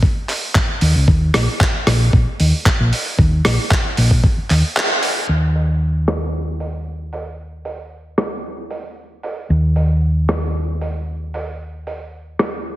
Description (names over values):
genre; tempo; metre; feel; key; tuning
nu-disco, nu disco; 114 BPM; 4/4; straight; unclear; A4 = 440 Hz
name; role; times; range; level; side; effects
electronic kick drum; drums; 0.0-4.3 s; none; -15 LUFS; equal; overdrive, small room ambience
dusty soul sampler-style drum kit; drums; 0.3-12.5 s; handclaps, hi-hat, rim click; -20 LUFS; equal; overdrive, low-pass filter on hats, small room ambience, low-pass filter on snare
hollow-body short-scale fingered electric bass; bass; 0.8-12.8 s; Bb1 to Eb2; -17 LUFS; equal; none
room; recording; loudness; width
light reverb, digital ambience; heavily compressed radio sound; -15 LUFS; side -15 dB against mid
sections
0.0-5.3 A section; 5.3-12.8 B section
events
kick drops out 4.8-5.3; band accent 4.8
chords
none